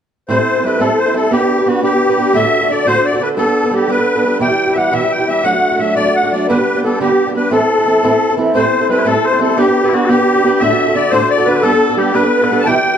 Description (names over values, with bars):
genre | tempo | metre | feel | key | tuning
celtic folk, Celtic jig | 116 BPM (dotted quarters) | 6/8 | straight | unclear | A4 = 435 Hz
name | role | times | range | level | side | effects
musette accordion | melody | 0.3-13.0 s | F#4 to A5 | -14 LUFS | left 1 dB | none
fingerpicked swing-style acoustic guitar | accompaniment | 0.3-13.0 s | E2 to B4 | -15 LUFS | right 2 dB | none
mellow small bagpipes | second line | 8.5-13.0 s | E4 to G5 | -19 LUFS | left 6 dB | none
room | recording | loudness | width
moderate recital hall reverb, RT60 1.7 s | dark, warm production | -11 LUFS | side -8 dB against mid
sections
0.3-8.5 A section; 8.5-13.0 A section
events
none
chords
0.3 Am7; 1.3 G/B; 2.3 D/A; 3.4 Gadd9; 4.4 Em; 5.4 D/F#; 6.5 G; 7.5 Am; 8.5 Am7; 9.6 G/B; 10.6 D/A; 11.6 Gadd9